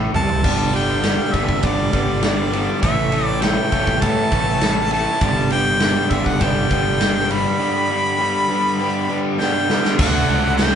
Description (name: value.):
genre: classic rock.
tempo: 100 BPM.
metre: 4/4.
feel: straight.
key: unclear.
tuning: A4 = 440 Hz.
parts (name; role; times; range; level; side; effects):
picked swing-style acoustic guitar; accompaniment; 0.0-10.8 s; A2 to C#5; -33 LUFS; equal; none.
crunchy overdriven guitar; riff; 0.0-10.8 s; G2 to A4; -24 LUFS; left 7 dB; none.
crunchy overdriven guitar; riff; 0.0-10.8 s; G2 to D4; -24 LUFS; right 7 dB; none.
fuzz fingered electric bass; bass; 0.0-10.8 s; G1 to A2; -24 LUFS; equal; overdrive.
clear harmonica; melody; 0.1-10.8 s; D5 to B5; -22 LUFS; left 1 dB; none.
big rock drum kit; drums; 0.1-10.7 s; crash cymbal, kick drum, ride cymbal, snare drum, toms; -21 LUFS; right 1 dB; none.
tambourine; percussion; 5.2-10.7 s; none; -43 LUFS; right 2 dB; none.
octave-fuzz lead guitar; second line; 9.4-10.8 s; A3 to C4; -30 LUFS; right 4 dB; none.
cranked stack guitar; riff; 10.0-10.8 s; D3 to D4; -26 LUFS; equal; none.
room: moderate large studio reverb, RT60 0.9 s.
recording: band playing live in one room, nothing above 10.7 kHz.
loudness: -16 LUFS.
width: side -8 dB against mid.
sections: 0.4-10.0 A section.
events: drum fill 0.0-0.4, 9.4-10.0.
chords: 0.4 G; 2.8 A; 5.2 G; 10.0 D.